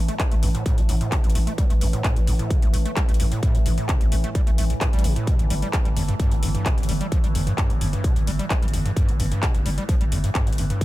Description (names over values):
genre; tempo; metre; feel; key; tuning
driving peak-time techno; 130 BPM; 4/4; straight; unclear; A4 = 440 Hz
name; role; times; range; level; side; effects
growling 808-style bass; bass; 0.0-10.7 s; G1 to A1; -26 LUFS; equal; overdrive, sidechain pumping, low-pass filter
overtone-sweeping drone; drone; 0.0-10.8 s; A2 to E3; -32 LUFS; right 2 dB; chorus, built-in reverb, sidechain pumping
overdriven acid bass; riff; 0.1-10.8 s; G1 to A3; -28 LUFS; equal; distortion, analog chorus, sidechain pumping
techno drum kit; drums; 0.1-10.8 s; handclaps, hi-hat; -31 LUFS; left 1 dB; sidechain pumping on hats, studio reverb, sidechain pumping on cymbals
electronic kick drum; drums; 0.2-10.8 s; none; -21 LUFS; equal; distortion, studio reverb
room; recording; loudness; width
little or no reverb; none; -19 LUFS; side -16 dB against mid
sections
0.0-10.8 A section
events
none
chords
0.0 A5; 5.3 N.C.